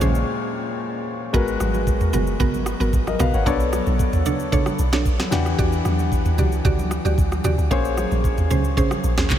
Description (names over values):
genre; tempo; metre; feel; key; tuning
amapiano; 113 BPM; 4/4; straight; unclear; A4 = 440 Hz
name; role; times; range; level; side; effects
clear grand piano; accompaniment; 0.0-9.4 s; A#2 to F#5; -25 LUFS; left 5 dB; none
mallet-like synth pluck; stabs; 0.0-9.3 s; B3 to D5; -26 LUFS; right 3 dB; chorus, analog delay
deep log drum bass; bass; 0.0-9.4 s; F#1 to E2; -22 LUFS; equal; none
afro-pop drum kit; drums; 0.0-9.4 s; handclaps, kick drum, rim click, shaker, snare drum, toms; -24 LUFS; equal; none
congas; percussion; 0.0-9.4 s; none; -29 LUFS; right 2 dB; none
room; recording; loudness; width
moderate huge ambient reverb, RT60 8.8 s; dreamy mix soaked in reverb; -18 LUFS; side -10 dB against mid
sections
0.0-1.3 A section; 1.3-9.4 B section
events
drop 0.0-1.3; break 0.3-1.3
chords
0.0 A#m9; 1.3 G#m9; 3.5 Bm9; 5.3 Em9; 7.7 A#m9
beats
0.28 0.81 | 1.34 1.87 2.40 2.93 | 3.46 4.00 4.53 5.06 | 5.59 6.12 6.65 7.18 | 7.71 8.24 8.77 9.30